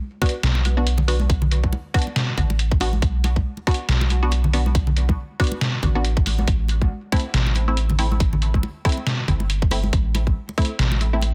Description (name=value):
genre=deep dubstep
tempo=139 BPM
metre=4/4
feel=swing 57% on 16ths, half-time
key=B phrygian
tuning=A4 = 438 Hz
part: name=filtered dub chord stab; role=stabs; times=0.2-11.2 s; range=A3 to F#4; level=-31 LUFS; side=equal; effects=phaser, cassette tape, dub echo
part: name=electronic kick drum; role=drums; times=0.2-10.7 s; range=none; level=-23 LUFS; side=equal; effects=none
part: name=trip hop sampler-style drum kit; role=drums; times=0.2-11.3 s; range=hi-hat, snare drum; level=-28 LUFS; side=equal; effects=none
part: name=congas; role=percussion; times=0.2-11.3 s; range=none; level=-32 LUFS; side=equal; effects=none
part: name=soft dub sub bass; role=bass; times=0.4-11.3 s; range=G1 to B1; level=-23 LUFS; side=equal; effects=none
room=little or no reverb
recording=dense, heavily limited modern master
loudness=-21 LUFS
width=mono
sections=0.0-11.3 A section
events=none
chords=0.0 Bm; 6.5 Am